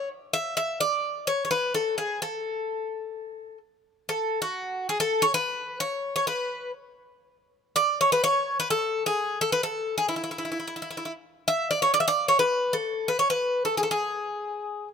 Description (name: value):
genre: greek folk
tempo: 130 BPM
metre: 4/4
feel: straight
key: A major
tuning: A4 = 440 Hz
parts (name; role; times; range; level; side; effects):
- Greek bouzouki; solo; 0.0-14.9 s; E4 to E5; -24 LUFS; left 1 dB; none
room: light reverb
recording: close, detailed microphones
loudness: -24 LUFS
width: side -7 dB against mid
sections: 0.0-4.1 A section; 4.1-14.9 B section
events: none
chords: none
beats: | 0.33 0.80 1.27 1.74 | 2.21 2.67 3.14 3.61 | 4.07 4.54 5.00 5.47 | 5.93 6.39 6.86 7.32 | 7.78 8.24 8.71 9.17 | 9.63 10.09 10.55 11.01 | 11.47 11.93 12.39 12.85 | 13.30 13.76 14.22 14.68